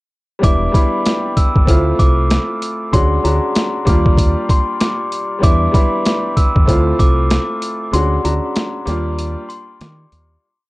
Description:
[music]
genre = hip hop, boom-bap hip-hop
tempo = 96 BPM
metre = 4/4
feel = swing 59% on 16ths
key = unclear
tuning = A4 = 439 Hz
[part]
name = glockenspiel with rubber mallets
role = melody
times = 0.4-10.1 s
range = Bb5 to E6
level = -21 LUFS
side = left 1 dB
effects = high-pass filter, low-pass filter, ping-pong delay
[part]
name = clear upright piano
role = accompaniment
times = 0.4-10.5 s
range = G3 to F#4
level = -20 LUFS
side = equal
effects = high-pass filter, low-pass filter
[part]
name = deep dub fingered electric bass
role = bass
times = 0.4-10.4 s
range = E1 to Eb3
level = -17 LUFS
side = equal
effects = transformer saturation
[part]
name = boom bap sampler-style drum kit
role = drums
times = 0.4-10.3 s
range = hi-hat, kick drum, snare drum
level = -14 LUFS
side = equal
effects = overdrive
[sound]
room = little or no reverb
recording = worn, warbling old tape, cassette tape, warbly pitch drift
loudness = -13 LUFS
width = side -20 dB against mid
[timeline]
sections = 0.4-10.4 verse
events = break 7.9-10.4; fade-out 7.9-10.4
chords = 0.4 Em7; 1.7 Dm9; 2.9 Bb7alt/D; 3.9 Ebmaj9; 5.4 Em7; 6.7 Dm9; 7.9 Bb7alt/D; 8.9 Ebmaj9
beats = | 0.43 1.06 1.68 2.31 | 2.93 3.56 4.18 4.81 | 5.43 6.06 6.68 7.31 | 7.93 8.56 9.18 9.81

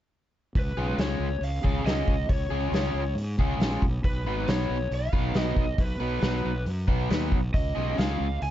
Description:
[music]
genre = indie rock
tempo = 137 BPM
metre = 4/4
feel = straight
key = Db mixolydian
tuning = A4 = 440 Hz
[part]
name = lead guitar through a small cranked amp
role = melody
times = 0.6-8.5 s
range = Cb5 to Ab5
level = -34 LUFS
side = equal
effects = overdrive, tape echo
[part]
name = fuzz fingered electric bass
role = bass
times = 0.6-8.5 s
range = Ab1 to Ab2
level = -29 LUFS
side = equal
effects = overdrive
[part]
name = vintage drum kit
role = drums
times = 0.6-8.5 s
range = hi-hat, kick drum, snare drum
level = -27 LUFS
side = equal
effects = none
[part]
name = crunchy overdriven guitar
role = riff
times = 0.8-8.3 s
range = Gb3 to Cb5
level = -30 LUFS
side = left 1 dB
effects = none
[sound]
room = little or no reverb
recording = dark, warm production, nothing above 7.7 kHz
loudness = -24 LUFS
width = side -12 dB against mid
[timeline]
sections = 0.6-8.5 A section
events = none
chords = 0.6 Db; 3.8 Cb; 7.5 Dbadd9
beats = | 0.55 0.99 1.43 1.86 | 2.30 2.73 3.17 3.61 | 4.04 4.48 4.92 5.35 | 5.79 6.23 6.67 7.10 | 7.54 7.97 8.41

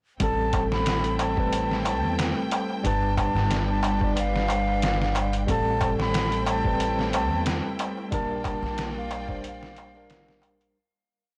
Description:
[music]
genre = trip hop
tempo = 91 BPM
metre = 4/4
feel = swing 54% on 16ths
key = A minor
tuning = A4 = 445 Hz
[part]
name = bright reedy wooden flute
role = melody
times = 0.2-10.7 s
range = F5 to B5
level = -32 LUFS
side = equal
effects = tape echo
[part]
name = tine electric piano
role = accompaniment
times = 0.2-10.8 s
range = G3 to D5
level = -32 LUFS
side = equal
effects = tremolo
[part]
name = clear studio string section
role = sustained chords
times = 0.2-10.7 s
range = G3 to G5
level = -36 LUFS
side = equal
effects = none
[part]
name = upright bass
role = bass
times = 0.2-10.7 s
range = G1 to E2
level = -32 LUFS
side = equal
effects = none
[part]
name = trip hop sampler-style drum kit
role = drums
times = 0.2-10.8 s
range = hi-hat, kick drum, snare drum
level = -32 LUFS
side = equal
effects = small room ambience
[part]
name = darbuka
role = percussion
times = 0.2-10.7 s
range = none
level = -36 LUFS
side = equal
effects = none
[sound]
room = light reverb, studio ambience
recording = blown-out, overdriven recording, overdrive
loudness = -25 LUFS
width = mono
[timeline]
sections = 0.2-10.8 groove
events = fade-out 7.2-10.8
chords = 0.2 Am7; 2.8 G; 5.5 Am7; 8.1 Bb6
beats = | 0.21 0.87 1.53 2.19 | 2.85 3.50 4.17 4.82 | 5.48 6.14 6.80 7.46 | 8.12 8.78 9.44 10.10

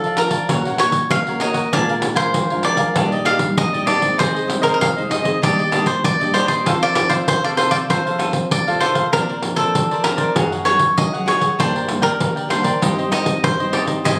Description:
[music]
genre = samba and choro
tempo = 97 BPM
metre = 4/4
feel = straight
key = Bb major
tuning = A4 = 441 Hz
[part]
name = cavaquinho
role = melody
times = 0.0-14.2 s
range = A4 to F5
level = -21 LUFS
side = equal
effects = none
[part]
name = cavaquinho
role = accompaniment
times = 0.0-14.2 s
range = D4 to A5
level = -25 LUFS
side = equal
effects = none
[part]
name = nylon-string guitar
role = accompaniment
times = 0.0-14.2 s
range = Gb2 to A4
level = -26 LUFS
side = equal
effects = none
[part]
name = pandeiro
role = percussion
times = 0.0-14.2 s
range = none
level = -24 LUFS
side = equal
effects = none
[sound]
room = moderate studio ambience, RT60 0.5 s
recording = recorded on a phone in the room, club reverb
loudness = -18 LUFS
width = mono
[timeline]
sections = 0.0-14.2 A section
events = none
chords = 0.5 Gb/Bb; 1.7 Bb7; 3.0 Ebmaj7/Bb; 4.2 Ab/C; 5.4 Ebmaj7; 6.7 F; 9.1 Bbadd9; 10.4 Gbsus2; 11.6 Gm; 12.8 Cm/G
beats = 0.49 1.11 | 1.72 2.34 2.96 3.58 | 4.19 4.81 5.43 6.04 | 6.66 7.28 7.89 8.51 | 9.13 9.74 10.36 10.98 | 11.59 12.21 12.82 13.44 | 14.06

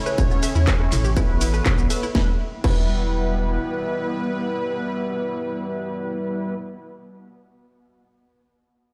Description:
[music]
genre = melodic techno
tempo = 122 BPM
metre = 4/4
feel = straight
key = E dorian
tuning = A4 = 435 Hz
[part]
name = fat analog lead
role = melody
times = 0.0-6.5 s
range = B3 to C#4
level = -33 LUFS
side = equal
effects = ensemble chorus, vintage 12-bit sampler grit, sidechain pumping, delay
[part]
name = soft supersaw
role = second line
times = 0.0-6.5 s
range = B4 to C#5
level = -34 LUFS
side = equal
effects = sidechain pumping, tape echo
[part]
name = dark analog pad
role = sustained chords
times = 0.0-6.1 s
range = E4 to C#6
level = -36 LUFS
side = equal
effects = chorus, sidechain pumping
[part]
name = analog pluck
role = arpeggios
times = 0.0-2.8 s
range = B3 to E5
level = -34 LUFS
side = equal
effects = chorus, sidechain pumping, tape echo
[part]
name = analog synth brass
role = stabs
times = 0.0-6.5 s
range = G3 to C#5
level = -32 LUFS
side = equal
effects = chorus, sidechain pumping, tape echo
[part]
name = techno drum kit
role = drums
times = 0.1-2.8 s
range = crash cymbal, handclaps, hi-hat, ride cymbal, rim click, shaker, snare drum, toms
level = -31 LUFS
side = equal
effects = sidechain pumping on toms, sidechain pumping on perc, sidechain pumping on hats, sidechain pumping on cymbals
[part]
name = round analog bass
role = bass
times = 0.2-3.6 s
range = E1 to E2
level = -25 LUFS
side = equal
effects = sidechain pumping
[part]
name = electronic kick drum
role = drums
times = 0.2-2.8 s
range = none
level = -23 LUFS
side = equal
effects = distortion
[sound]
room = light reverb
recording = played on a big sound system in a bare room, stone room reverb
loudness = -23 LUFS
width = mono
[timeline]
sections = 0.0-2.1 A section; 2.1-6.1 B section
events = drop 0.0-2.1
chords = 0.0 A; 2.1 Em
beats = | 0.18 0.68 1.17 1.66 | 2.15 2.64 3.13 3.62 | 4.12 4.61 5.10 5.59

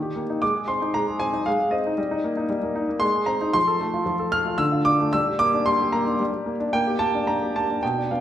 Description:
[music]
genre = classical-period piano sonatina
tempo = 114 BPM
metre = 3/4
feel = rubato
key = unclear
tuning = A4 = 440 Hz
[part]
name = clear grand piano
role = solo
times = 0.0-8.2 s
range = B2 to F6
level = -21 LUFS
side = equal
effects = none
[sound]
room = wet recital hall reverb, RT60 1.3 s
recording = recorded in a church or concert hall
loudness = -20 LUFS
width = side -11 dB against mid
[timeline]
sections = 0.0-8.2 A section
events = none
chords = 0.4 Ab; 2.0 Eb/G; 3.0 Ab; 3.6 F; 4.6 Dm; 5.1 Gm; 6.7 Gm/Bb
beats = | 0.42 0.94 1.46 | 1.98 2.50 3.03 | 3.56 4.08 4.60 | 5.13 5.66 6.20 | 6.74 7.27 7.82

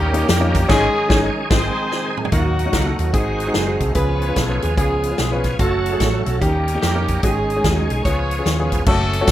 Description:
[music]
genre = uptempo gospel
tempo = 147 BPM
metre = 4/4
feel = swing 64% on 8ths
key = unclear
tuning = A4 = 440 Hz
[part]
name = warm horn section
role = melody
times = 0.0-9.3 s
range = F#3 to C#5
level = -25 LUFS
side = left 2 dB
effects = none
[part]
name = warm upright piano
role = accompaniment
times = 0.0-9.3 s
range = G#2 to C#5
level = -23 LUFS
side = left 2 dB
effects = none
[part]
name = bright tonewheel organ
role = sustained chords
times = 0.0-8.9 s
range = D#3 to A4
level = -25 LUFS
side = right 2 dB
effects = slow rotary speaker, chorus vibrato
[part]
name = hollow-body short-scale fingered electric bass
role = bass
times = 0.0-9.3 s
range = D#1 to E#2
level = -21 LUFS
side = equal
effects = none
[part]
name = swinging big-band drum kit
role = drums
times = 0.1-9.3 s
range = crash cymbal, hi-hat, kick drum, snare drum, toms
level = -21 LUFS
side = equal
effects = none
[part]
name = mellow electric guitar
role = melody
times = 2.3-8.7 s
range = F#4 to C#5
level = -26 LUFS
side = right 4 dB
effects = none
[sound]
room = light reverb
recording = rough home demo mix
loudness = -16 LUFS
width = side -13 dB against mid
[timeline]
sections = 0.0-2.3 A section; 2.3-8.9 B section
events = band accent 0.7-2.3; drum fill 1.9-2.3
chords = 0.0 D#7; 0.7 G#sus4; 1.5 G#; 2.3 D#m; 3.1 G#7; 4.0 C#7; 5.6 F#m; 6.4 D#7; 7.2 G#sus4; 8.1 C#7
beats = 0.28 | 0.69 1.10 1.50 1.91 | 2.32 2.73 3.14 3.55 | 3.96 4.37 4.77 5.18 | 5.59 6.00 6.41 6.82 | 7.23 7.64 8.05 8.46 | 8.87 9.28

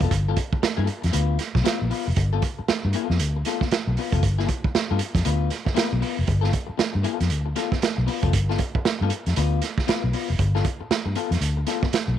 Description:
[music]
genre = funk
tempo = 117 BPM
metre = 4/4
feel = swing 60% on 16ths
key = G mixolydian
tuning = A4 = 440 Hz
[part]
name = electric guitar at the edge of break-up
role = accompaniment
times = 0.0-12.1 s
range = B3 to B4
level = -29 LUFS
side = left 14 dB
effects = none
[part]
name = vintage muted fingered electric bass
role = bass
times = 0.0-12.2 s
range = F1 to G2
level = -22 LUFS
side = left 1 dB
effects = none
[part]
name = vintage drum kit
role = drums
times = 0.0-12.1 s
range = hi-hat, kick drum, snare drum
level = -25 LUFS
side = right 4 dB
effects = none
[sound]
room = light reverb, small room ambience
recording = 1960s-style stereo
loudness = -21 LUFS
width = side -10 dB against mid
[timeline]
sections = 0.0-12.2 A section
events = none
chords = 0.0 G9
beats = | 0.11 0.63 1.14 1.66 | 2.17 2.68 3.20 3.71 | 4.23 4.74 5.25 5.77 | 6.28 6.79 7.31 7.82 | 8.34 8.85 9.36 9.88 | 10.39 10.90 11.41 11.93

